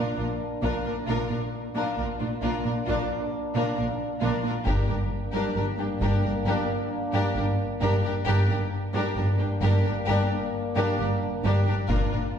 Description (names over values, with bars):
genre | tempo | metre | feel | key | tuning
cinematic, epic orchestral film score | 66 BPM | 4/4 | straight | G minor | A4 = 443 Hz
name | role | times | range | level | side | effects
rich symphonic violin section | melody | 0.0-12.2 s | F4 to Bb4 | -34 LUFS | left 2 dB | none
rich symphonic violin section | second line | 0.0-12.2 s | D4 to G4 | -34 LUFS | left 2 dB | none
rich studio viola section | accompaniment | 0.0-12.2 s | D4 | -33 LUFS | left 1 dB | none
clear French horn section | sustained chords | 0.0-12.4 s | Bb3 to D4 | -32 LUFS | left 1 dB | none
rich symphonic cello section | bass | 0.0-12.2 s | G2 to Bb2 | -30 LUFS | right 2 dB | none
clear symphonic double bass section | bass | 0.2-12.0 s | G1 to Bb1 | -29 LUFS | right 1 dB | none
solo taiko drums | drums | 4.7-6.4, 11.9-12.4 s | none | -30 LUFS | left 1 dB | none
room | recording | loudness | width
wet scoring stage reverb, RT60 1.8 s | heard from further back in the room | -24 LUFS | side -8 dB against mid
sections
0.0-12.4 A section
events
build-up 0.0-12.4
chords
0.0 Bb; 4.7 Gm; 11.9 Bb